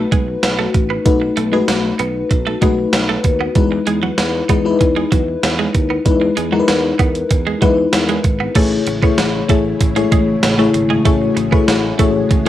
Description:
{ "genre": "1980s-style pop", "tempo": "96 BPM", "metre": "4/4", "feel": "straight", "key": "E major", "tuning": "A4 = 440 Hz", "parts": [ { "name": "FM electric piano with soft pad layer", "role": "accompaniment", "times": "0.0-12.5 s", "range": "G#3 to C#5", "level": "-16 LUFS", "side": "left 4 dB", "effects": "chorus, tremolo" }, { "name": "twelve-string electric guitar", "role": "riff", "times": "0.0-12.3 s", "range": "F#3 to B3", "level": "-22 LUFS", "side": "right 7 dB", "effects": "wide subtle chorus, analog delay" }, { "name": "sustaining fretless electric bass", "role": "bass", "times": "0.0-12.5 s", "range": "G#1 to E2", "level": "-24 LUFS", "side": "right 1 dB", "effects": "analog chorus" }, { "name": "gated 80s digital drum machine", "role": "drums", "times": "0.1-12.5 s", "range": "crash cymbal, hi-hat, kick drum, snare drum", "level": "-16 LUFS", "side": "right 2 dB", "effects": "gated reverb, gated reverb snare, cassette tape" }, { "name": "string machine, cellos", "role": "sustained chords", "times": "8.6-12.5 s", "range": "C#3 to G#4", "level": "-23 LUFS", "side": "right 1 dB", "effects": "phaser, ensemble chorus" } ], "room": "moderate studio reverb, RT60 0.6 s", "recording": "home recording on cassette", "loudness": "-13 LUFS", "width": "side -12 dB against mid", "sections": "0.0-8.6 A section; 8.6-12.5 B section", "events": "none", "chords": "0.0 B7; 3.6 Emaj7; 8.6 Amaj7" }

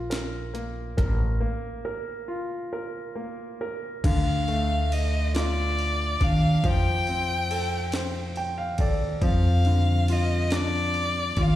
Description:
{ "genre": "six-eight pop ballad", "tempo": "46 BPM (dotted quarters)", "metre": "6/8", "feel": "straight", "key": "unclear", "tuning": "A4 = 440 Hz", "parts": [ { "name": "clear concert grand piano", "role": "accompaniment", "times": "0.0-11.6 s", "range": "D3 to G5", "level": "-31 LUFS", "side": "left 1 dB", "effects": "slapback echo" }, { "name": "upright bass", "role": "bass", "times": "0.0-11.6 s", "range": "A1 to F2", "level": "-25 LUFS", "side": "equal", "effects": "none" }, { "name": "jungle sampler-style drum kit", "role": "drums", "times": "0.1-11.6 s", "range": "crash cymbal, hi-hat, kick drum, ride cymbal, snare drum", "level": "-29 LUFS", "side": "equal", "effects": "none" }, { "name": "clear violin", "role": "melody", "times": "4.1-11.6 s", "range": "D5 to G5", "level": "-28 LUFS", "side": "left 2 dB", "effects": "slapback echo" } ], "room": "studio ambience", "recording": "live gig heard through the venue's PA, recital hall reverb", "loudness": "-23 LUFS", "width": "side -13 dB against mid", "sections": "0.0-4.0 A section; 4.0-11.6 B section", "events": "break 1.4-4.0; grand piano fill 7.9-9.2", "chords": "0.0 Fsus4; 4.0 Dm; 6.6 Fadd9; 9.2 Dm" }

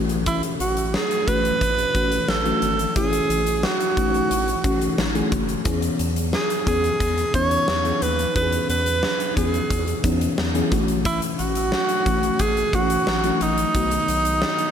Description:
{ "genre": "1980s-style pop", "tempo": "89 BPM", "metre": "4/4", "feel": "straight", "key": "unclear", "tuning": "A4 = 444 Hz", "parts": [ { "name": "FM electric piano with soft pad layer", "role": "accompaniment", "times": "0.0-14.7 s", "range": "D#3 to G#4", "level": "-25 LUFS", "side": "left 2 dB", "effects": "chorus" }, { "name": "round analog bass", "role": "bass", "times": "0.0-14.4 s", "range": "F#1 to E2", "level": "-27 LUFS", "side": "equal", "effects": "none" }, { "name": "huge arena drum kit", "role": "drums", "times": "0.1-14.7 s", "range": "hi-hat, kick drum, snare drum", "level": "-25 LUFS", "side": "left 1 dB", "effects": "none" }, { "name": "bright alto saxophone", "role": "melody", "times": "0.3-14.7 s", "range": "D#4 to C#5", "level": "-22 LUFS", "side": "right 2 dB", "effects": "digital delay" } ], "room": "light reverb, small room reverb", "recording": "none", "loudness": "-19 LUFS", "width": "side -8 dB against mid", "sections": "0.0-14.7 A section", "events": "none", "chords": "0.0 A6; 5.7 E6; 10.7 A6; 13.7 B7" }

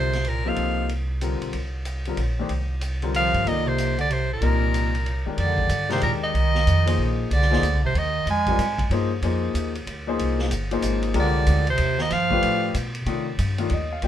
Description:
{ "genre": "modal jazz", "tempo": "187 BPM", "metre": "3/4", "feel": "swing 63% on 8ths", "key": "F dorian from 5.4 s", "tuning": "A4 = 438 Hz", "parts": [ { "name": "bright soprano saxophone", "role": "melody", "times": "0.0-0.9, 3.2-8.9, 11.2-12.8 s", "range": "Bb4 to Ab5", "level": "-24 LUFS", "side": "right 1 dB", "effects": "none" }, { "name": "clear bass clarinet", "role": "second line", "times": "0.0-0.9, 3.1-8.9, 11.2-12.7 s", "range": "Bb2 to Ab3", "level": "-28 LUFS", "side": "right 4 dB", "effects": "none" }, { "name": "clear grand piano", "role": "accompaniment", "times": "0.0-14.1 s", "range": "C3 to G5", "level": "-27 LUFS", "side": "left 6 dB", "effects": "none" }, { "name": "upright bass", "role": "bass", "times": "0.0-14.1 s", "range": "G1 to C3", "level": "-24 LUFS", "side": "equal", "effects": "none" }, { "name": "vintage drum kit", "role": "drums", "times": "0.1-14.1 s", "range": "hi-hat, kick drum, ride cymbal, snare drum", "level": "-33 LUFS", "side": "equal", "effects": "none" } ], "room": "light reverb", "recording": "minimal, uncompressed stereo recording", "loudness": "-20 LUFS", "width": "side -11 dB against mid", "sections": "0.0-5.4 A section; 5.4-13.1 B section; 13.1-14.1 C section", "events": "none", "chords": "0.0 Ebadd9/C; 1.5 C7(no3); 3.5 Ebsus2/C; 5.4 Fm11; 12.1 G7; 13.1 Cm" }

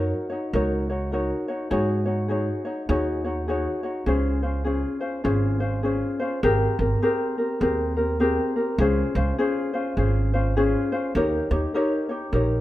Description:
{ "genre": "Hawaiian", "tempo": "102 BPM", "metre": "4/4", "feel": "swing 61% on 8ths", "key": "Db major, Ab major from 6.4 s", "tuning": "A4 = 438 Hz", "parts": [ { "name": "ukulele", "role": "accompaniment", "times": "0.0-12.6 s", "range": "C4 to Db5", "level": "-23 LUFS", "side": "left 1 dB", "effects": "none" }, { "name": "upright bass", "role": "bass", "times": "0.0-12.6 s", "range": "Ab1 to Ab2", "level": "-25 LUFS", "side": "right 1 dB", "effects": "none" } ], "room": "moderate recital hall reverb, RT60 1.5 s", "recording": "none", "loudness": "-22 LUFS", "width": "side -15 dB against mid", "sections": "0.0-6.4 A section; 6.4-12.6 B section", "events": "none", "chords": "0.0 Gb6; 1.7 Ab7sus4; 4.1 Dbmaj7; 6.4 Abmaj9; 8.8 Dbmaj7; 11.1 Eb7" }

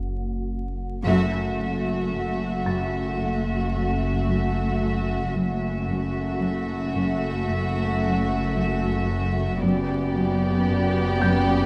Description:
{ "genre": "cinematic, suspense film score", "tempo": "56 BPM", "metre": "4/4", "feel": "straight", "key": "F# phrygian", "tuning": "A4 = 436 Hz", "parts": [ { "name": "organ-like drone", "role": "drone", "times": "0.0-11.7 s", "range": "F#1", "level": "-33 LUFS", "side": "equal", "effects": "ensemble chorus, built-in reverb" }, { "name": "warm grand piano", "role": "texture", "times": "0.0-11.7 s", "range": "G5 to A6", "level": "-36 LUFS", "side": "equal", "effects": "none" }, { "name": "dark studio violin section", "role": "second line", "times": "1.0-11.7 s", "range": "F#4 to G4", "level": "-33 LUFS", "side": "equal", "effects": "none" }, { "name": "warm studio violin section", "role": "melody", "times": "1.1-11.7 s", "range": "D5 to E5", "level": "-35 LUFS", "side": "equal", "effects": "none" }, { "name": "warm studio viola section", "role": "accompaniment", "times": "1.1-11.7 s", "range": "A3 to B3", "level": "-33 LUFS", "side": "equal", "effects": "none" }, { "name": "warm studio cello section", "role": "riff", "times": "1.1-11.6 s", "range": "F#2 to F#3", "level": "-32 LUFS", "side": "equal", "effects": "none" }, { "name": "dark studio cello section", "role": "bass", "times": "1.1-11.7 s", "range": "F#2", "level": "-30 LUFS", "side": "equal", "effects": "none" }, { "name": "rich studio double bass section", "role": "bass", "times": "1.1-11.7 s", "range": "F#1", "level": "-32 LUFS", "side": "equal", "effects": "none" } ], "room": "moderate recital hall reverb, RT60 1.4 s", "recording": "vinyl crackle", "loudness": "-24 LUFS", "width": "mono", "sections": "0.0-1.1 A section; 1.1-11.7 B section", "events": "break 0.0-1.1; band accent 1.1-2.1", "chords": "0.0 B5/F#; 1.1 F#m7; 9.6 G/F#" }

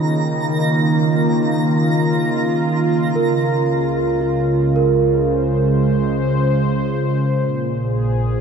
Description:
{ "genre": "ambient", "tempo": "56 BPM", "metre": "4/4", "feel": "straight", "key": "Db major from 3.1 s", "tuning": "A4 = 438 Hz", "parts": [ { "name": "warm analog pad", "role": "sustained chords", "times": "0.0-8.4 s", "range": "Bb2 to Eb5", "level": "-16 LUFS", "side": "right 1 dB", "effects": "chorus" }, { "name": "large celesta", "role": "arpeggios", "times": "0.0-8.4 s", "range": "F4 to Cb6", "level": "-24 LUFS", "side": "right 4 dB", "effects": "tape echo" }, { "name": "bowed-like drone", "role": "drone", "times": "0.0-3.2 s", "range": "Db3", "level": "-30 LUFS", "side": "equal", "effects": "none" }, { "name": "twinkling granular texture", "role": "texture", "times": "0.0-3.1 s", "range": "Bb5", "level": "-27 LUFS", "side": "right 2 dB", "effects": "built-in reverb" }, { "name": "round analog bass", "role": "bass", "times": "3.1-8.4 s", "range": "Bb1 to Db2", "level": "-33 LUFS", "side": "equal", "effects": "tube saturation" } ], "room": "wet lush hall reverb, RT60 2.8 s", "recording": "none", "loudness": "-15 LUFS", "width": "side -6 dB against mid", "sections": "0.0-3.1 A section; 3.1-8.4 B section", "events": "fade-in on analog synth bass 3.1-8.4", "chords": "0.0 Ebsus2; 3.1 Dbmaj7; 7.4 Bb7(no3)" }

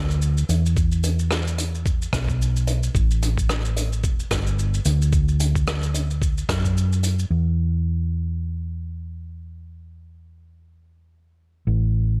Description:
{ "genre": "sunset chillout", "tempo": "110 BPM", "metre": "4/4", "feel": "swing 57% on 16ths", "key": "unclear", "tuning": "A4 = 440 Hz", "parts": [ { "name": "hollow-body short-scale fingered electric bass", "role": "bass", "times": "0.0-12.2 s", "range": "E1 to F#2", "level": "-24 LUFS", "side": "equal", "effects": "none" }, { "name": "vintage brush drum kit", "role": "drums", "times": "0.1-7.3 s", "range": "hi-hat, rim click, shaker", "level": "-31 LUFS", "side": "equal", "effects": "low-pass filter on hats, low-pass filter on snare, low-pass filter on perc, low-pass filter on room" }, { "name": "electronic kick drum", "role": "drums", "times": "0.8-6.7 s", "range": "none", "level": "-26 LUFS", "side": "equal", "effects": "none" } ], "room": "little or no reverb", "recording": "none", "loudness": "-22 LUFS", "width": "mono", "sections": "0.0-7.3 A section; 7.3-12.2 B section", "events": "none", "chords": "none" }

